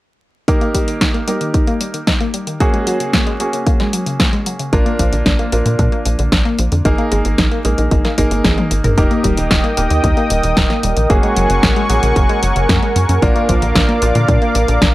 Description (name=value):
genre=italo disco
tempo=113 BPM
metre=4/4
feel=straight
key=unclear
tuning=A4 = 440 Hz
part: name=analog pluck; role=arpeggios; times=0.5-14.9 s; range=Db3 to Bb4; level=-22 LUFS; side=left 1 dB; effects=chorus, phaser, tape echo
part: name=clear concert grand piano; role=stabs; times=0.5-14.9 s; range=Bb3 to Bb4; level=-21 LUFS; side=right 1 dB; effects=low-pass filter, tape echo
part: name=electronic kick drum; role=drums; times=0.5-14.9 s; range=none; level=-16 LUFS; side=equal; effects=small room ambience
part: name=house drum kit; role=drums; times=0.5-14.9 s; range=hi-hat, snare drum, toms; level=-18 LUFS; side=equal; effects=small room ambience
part: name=tight sequencer bass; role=bass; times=4.7-14.9 s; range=Eb1 to Bb2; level=-17 LUFS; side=equal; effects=none
part: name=warm analog pad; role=sustained chords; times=9.0-14.9 s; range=Bb4 to Eb6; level=-18 LUFS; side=equal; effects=chorus
room=little or no reverb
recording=dry, gritty hardware recording, vinyl crackle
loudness=-12 LUFS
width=side -17 dB against mid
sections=0.5-9.0 A section; 9.0-14.9 B section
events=filter sweep on synth arpeggio sound 0.5-9.0; drum fill 8.4-9.0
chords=0.5 Eb; 2.6 Gbadd9; 4.7 Bb; 6.9 Absus2; 9.0 Eb; 11.1 Gbadd9; 13.2 Bb